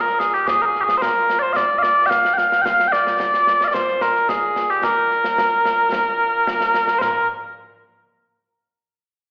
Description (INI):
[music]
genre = scottish traditional, Scottish pipe music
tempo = 110 BPM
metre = 4/4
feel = straight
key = Bb mixolydian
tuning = A4 = 440 Hz
[part]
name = mellow small bagpipes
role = melody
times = 0.0-7.3 s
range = Bb2 to G5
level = -18 LUFS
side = equal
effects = slapback echo
[part]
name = concert snare drum, concert bass drum and concert toms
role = drums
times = 0.1-7.1 s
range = none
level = -32 LUFS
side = equal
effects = slapback echo
[sound]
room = moderate club reverb, RT60 0.6 s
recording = live gig heard through the venue's PA, recital hall reverb, telephone sound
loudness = -18 LUFS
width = mono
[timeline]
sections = 0.0-7.0 A section; 7.0-9.2 B section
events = none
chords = none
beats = | 0.47 1.02 1.56 2.11 | 2.65 3.20 3.74 4.29 | 4.83 5.38 5.92 6.47 | 7.02